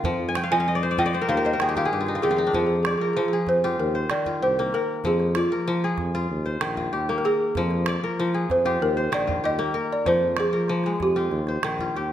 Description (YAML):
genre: west african traditional, West African string and xylophone music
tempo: 96 BPM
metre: 4/4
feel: straight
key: F dorian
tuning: A4 = 436 Hz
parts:
  - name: balafon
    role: melody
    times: 0.0-11.9 s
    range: F4 to Ab5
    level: -24 LUFS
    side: right 1 dB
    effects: none
  - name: kora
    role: arpeggios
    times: 0.0-12.1 s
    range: Eb3 to Ab5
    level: -26 LUFS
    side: left 2 dB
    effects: none
  - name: mellow tuba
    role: bass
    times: 0.0-12.1 s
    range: Bb1 to F3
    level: -28 LUFS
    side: equal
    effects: none
  - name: calabash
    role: percussion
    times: 0.0-12.0 s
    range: none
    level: -32 LUFS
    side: right 5 dB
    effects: none
room: wet recital hall reverb, RT60 1.3 s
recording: none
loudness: -21 LUFS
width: side -11 dB against mid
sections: 0.0-2.5 A section; 2.5-12.1 B section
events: balafon solo 0.0-2.5; kora fill 0.3-2.5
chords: 0.0 Fm13; 1.3 Eb; 2.5 Fm; 3.8 Eb; 5.0 Fm; 6.3 Eb; 7.5 Fm; 8.8 Eb; 10.1 Fm; 11.3 Eb